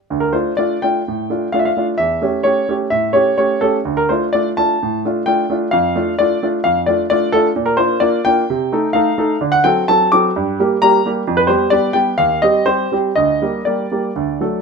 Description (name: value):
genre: classical-period piano sonatina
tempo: 128 BPM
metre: 4/4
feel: uneven beats, rubato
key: D minor, G minor from 7.6 s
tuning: A4 = 440 Hz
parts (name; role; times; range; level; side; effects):
- clear baby grand piano; solo; 0.1-14.6 s; D2 to D6; -14 LUFS; equal; none
room: light reverb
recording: minimal, uncompressed stereo recording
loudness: -14 LUFS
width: side -5 dB against mid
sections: 0.1-14.6 A section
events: none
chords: 0.1 Dm; 2.0 A7/E; 3.9 Dm; 5.7 Dm/F; 7.6 Bb; 8.5 Adim/C; 9.4 D7; 10.4 Gm; 11.3 G7/F; 12.2 Cm/Eb; 13.2 Gm/D